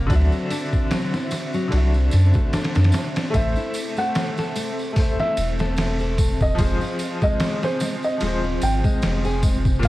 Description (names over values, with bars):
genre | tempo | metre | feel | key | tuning
trip hop | 74 BPM | 4/4 | swing 56% on 16ths | unclear | A4 = 440 Hz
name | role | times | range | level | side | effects
bright upright piano | accompaniment | 0.0-9.9 s | Bb2 to E5 | -29 LUFS | left 1 dB | tremolo, tape echo
string machine, cellos | sustained chords | 0.0-9.9 s | C4 to C5 | -31 LUFS | right 1 dB | ensemble chorus
nylon-string guitar | arpeggios | 0.0-9.9 s | F#3 to A4 | -29 LUFS | left 2 dB | tape echo
round analog bass | bass | 0.0-9.9 s | D#1 to F#2 | -20 LUFS | equal | none
trip hop sampler-style drum kit | drums | 0.1-9.9 s | hi-hat, kick drum, ride cymbal, snare drum | -24 LUFS | equal | studio reverb
tambourine | percussion | 0.1-9.9 s | none | -39 LUFS | right 2 dB | none
felt-muted upright piano | melody | 3.4-9.9 s | C5 to G5 | -27 LUFS | right 1 dB | tape echo
room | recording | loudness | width
small room ambience | dark, warm production, vinyl crackle | -19 LUFS | side -17 dB against mid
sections
0.0-3.3 A section; 3.3-9.9 B section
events
none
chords
0.1 Dadd9; 3.3 Am; 6.6 Fm